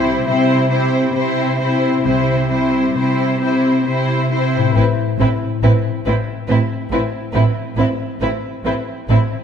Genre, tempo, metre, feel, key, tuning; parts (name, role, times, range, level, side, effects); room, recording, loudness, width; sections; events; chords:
cinematic, emotional film score for orchestra; 68 BPM; 3/4; rubato; A minor; A4 = 440 Hz
clear symphonic violin section; melody; 0.0-9.2 s; B4 to C5; -24 LUFS; left 4 dB
clear symphonic violin section; second line; 0.0-9.2 s; E4; -23 LUFS; left 1 dB
rich symphonic viola section; accompaniment; 0.0-9.2 s; C4; -20 LUFS; right 1 dB
concert harp; arpeggios; 0.0-8.6 s; A2 to E5; -23 LUFS; left 8 dB
rich symphonic cello section; bass; 0.0-9.2 s; A2 to C3; -21 LUFS; right 1 dB
rich symphonic double bass section; bass; 0.0-9.2 s; A1 to C2; -21 LUFS; right 3 dB
wet scoring stage reverb, RT60 1.9 s; -15 LUFS; side -8 dB against mid
0.0-4.8 A section; 4.8-9.4 B section
0.0 C; 4.8 Amadd9